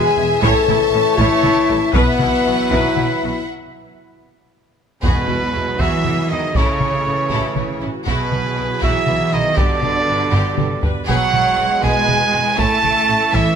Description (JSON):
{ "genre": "cinematic, epic orchestral film score", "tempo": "79 BPM (dotted quarters)", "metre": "6/8", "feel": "straight", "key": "E major", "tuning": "A4 = 440 Hz", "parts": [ { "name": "warm symphonic violin section", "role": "melody", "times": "0.0-13.6 s", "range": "B4 to A5", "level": "-27 LUFS", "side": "left 2 dB", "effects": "none" }, { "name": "clear symphonic violin section", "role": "second line", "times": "0.0-13.6 s", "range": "G3 to E5", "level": "-28 LUFS", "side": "left 2 dB", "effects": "none" }, { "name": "large flute ensemble", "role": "second line", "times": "0.0-3.5 s", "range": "B4 to A5", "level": "-24 LUFS", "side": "equal", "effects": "none" }, { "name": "bright trombone section", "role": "sustained chords", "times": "0.0-13.6 s", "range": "B2 to A3", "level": "-27 LUFS", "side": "right 6 dB", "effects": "none" }, { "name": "mellow French horn section", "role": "sustained chords", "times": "0.0-13.6 s", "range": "G#3 to A4", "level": "-22 LUFS", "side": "left 6 dB", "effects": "none" }, { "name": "warm trumpet", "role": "stabs", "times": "0.0-13.6 s", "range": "B4 to A5", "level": "-20 LUFS", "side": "right 3 dB", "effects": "none" }, { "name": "clear symphonic viola section", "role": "accompaniment", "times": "0.2-13.6 s", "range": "E4 to C#5", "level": "-28 LUFS", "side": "equal", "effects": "none" }, { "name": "rich symphonic cello section", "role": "bass", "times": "0.2-13.6 s", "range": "E2 to A3", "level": "-23 LUFS", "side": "right 2 dB", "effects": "none" }, { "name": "warm symphonic double bass section", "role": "bass", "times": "0.2-13.4 s", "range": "E1 to E2", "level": "-25 LUFS", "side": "right 3 dB", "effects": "none" }, { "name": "taiko ensemble", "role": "drums", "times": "0.4-13.6 s", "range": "none", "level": "-22 LUFS", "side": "equal", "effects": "none" }, { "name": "timpani", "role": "percussion", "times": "5.0-5.8 s", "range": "E2", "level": "-28 LUFS", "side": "equal", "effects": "none" } ], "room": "moderate scoring stage reverb, RT60 2.1 s", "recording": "close, detailed microphones", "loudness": "-14 LUFS", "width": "side -7 dB against mid", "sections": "0.0-5.0 A section; 5.0-13.6 B section", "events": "break 3.5-5.0; drum fill 4.3-5.0, 10.3-11.1", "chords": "0.4 A; 1.9 Bsus4; 3.5 N.C.; 5.0 Eadd9; 6.6 A; 8.1 Bsus4; 9.6 G; 11.1 Eadd9; 12.6 A", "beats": "| 0.43 1.19 | 1.95 2.72 | 3.49 4.27 | 5.04 5.80 | 6.56 7.32 | 8.08 8.83 | 9.58 10.34 | 11.09 11.84 | 12.59 13.35" }